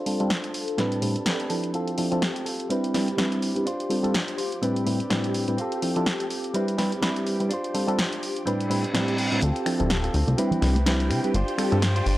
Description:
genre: filtered disco house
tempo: 125 BPM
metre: 4/4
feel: swing 57% on 16ths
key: D dorian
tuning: A4 = 441 Hz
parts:
  - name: phased string machine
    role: sustained chords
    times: 0.0-12.2 s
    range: G4 to A5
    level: -33 LUFS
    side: equal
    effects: ensemble chorus, phaser, low-pass filter
  - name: direct-recorded clean electric guitar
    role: riff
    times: 0.0-12.2 s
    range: G3 to C5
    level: -30 LUFS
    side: right 1 dB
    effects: vintage 12-bit sampler grit, low-pass filter
  - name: reed electric piano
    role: accompaniment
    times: 0.1-11.8 s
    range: A2 to B4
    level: -26 LUFS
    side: equal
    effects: phaser, low-pass filter
  - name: punchy analog drum machine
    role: drums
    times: 0.1-12.2 s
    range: finger snaps, hi-hat, snare drum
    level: -29 LUFS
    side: equal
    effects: none
  - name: reverse cymbal and riser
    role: sound effects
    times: 8.7-12.2 s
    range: none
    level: -33 LUFS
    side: equal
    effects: none
  - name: plucky analog bass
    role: bass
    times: 9.4-12.2 s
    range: D1 to C3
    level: -23 LUFS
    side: equal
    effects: low-pass filter
  - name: tambourine and congas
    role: percussion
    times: 9.4-12.2 s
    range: none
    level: -30 LUFS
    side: right 2 dB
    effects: low-pass filter on perc
room: little or no reverb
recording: dry, gritty hardware recording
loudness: -22 LUFS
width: side -16 dB against mid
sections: 0.0-9.4 A section; 9.4-12.2 B section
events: filter sweep 0.0-9.4, 9.4-12.2; reverse cymbal 8.7-9.4; build-up 9.4-12.2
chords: 0.0 G7sus4; 0.8 Am11; 1.7 Dm7; 2.7 Cmaj7; 3.7 G7sus4; 4.6 Am11; 5.6 Dm7; 6.5 Cmaj7; 7.5 G7sus4; 8.5 Am11; 9.4 Dm7; 10.4 Cmaj7; 11.3 G7sus4

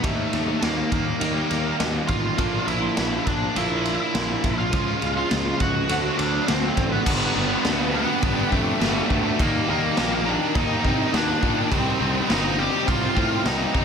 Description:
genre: quiet-loud alternative rock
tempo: 103 BPM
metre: 4/4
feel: straight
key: unclear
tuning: A4 = 440 Hz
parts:
  - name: octave-fuzz lead guitar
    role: melody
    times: 0.0-13.8 s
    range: A3 to G5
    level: -26 LUFS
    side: equal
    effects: distortion, slapback echo, plate reverb
  - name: twelve-string electric guitar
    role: arpeggios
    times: 0.0-6.7 s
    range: D3 to G4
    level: -33 LUFS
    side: equal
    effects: ensemble chorus, plate reverb
  - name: distorted electric guitar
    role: riff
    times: 0.0-13.8 s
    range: G2 to Eb4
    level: -25 LUFS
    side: right 1 dB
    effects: distortion
  - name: fuzz picked electric bass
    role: bass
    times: 0.0-13.8 s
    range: G1 to C3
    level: -28 LUFS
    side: equal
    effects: overdrive
  - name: raw garage drum kit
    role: drums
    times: 0.0-13.8 s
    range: crash cymbal, kick drum, ride cymbal, snare drum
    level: -26 LUFS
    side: equal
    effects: none
  - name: clear symphonic string section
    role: sustained chords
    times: 7.1-13.8 s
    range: Eb3 to G5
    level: -33 LUFS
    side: left 3 dB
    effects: plate reverb
room: light reverb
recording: none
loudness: -20 LUFS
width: side -6 dB against mid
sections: 0.0-7.1 A section; 7.1-13.8 B section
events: none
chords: 0.0 Eb; 2.4 Bb; 4.7 C#; 5.9 D7; 7.1 G; 9.4 Eb; 11.7 Cm

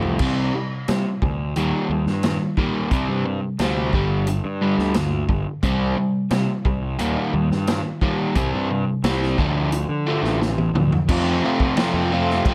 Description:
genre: classic rock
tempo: 88 BPM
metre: 4/4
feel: straight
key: unclear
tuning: A4 = 440 Hz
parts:
  - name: crunchy overdriven guitar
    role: riff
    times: 0.0-12.5 s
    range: F2 to F4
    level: -24 LUFS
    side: equal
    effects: none
  - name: fuzz picked electric bass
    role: bass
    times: 0.0-12.5 s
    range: G1 to F3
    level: -27 LUFS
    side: equal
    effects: overdrive
  - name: vintage drum kit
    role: drums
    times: 0.0-12.5 s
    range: crash cymbal, hi-hat, kick drum, ride cymbal, snare drum, toms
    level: -27 LUFS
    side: equal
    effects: none
room: light reverb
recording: none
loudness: -21 LUFS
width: mono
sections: 0.2-11.1 A section; 11.1-12.5 B section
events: drum fill 0.0, 10.4-11.1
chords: 0.2 C5; 1.6 Eb; 2.9 C5; 3.9 G5; 5.6 C5; 7.0 Eb; 8.4 C5; 9.4 Dm; 11.1 F

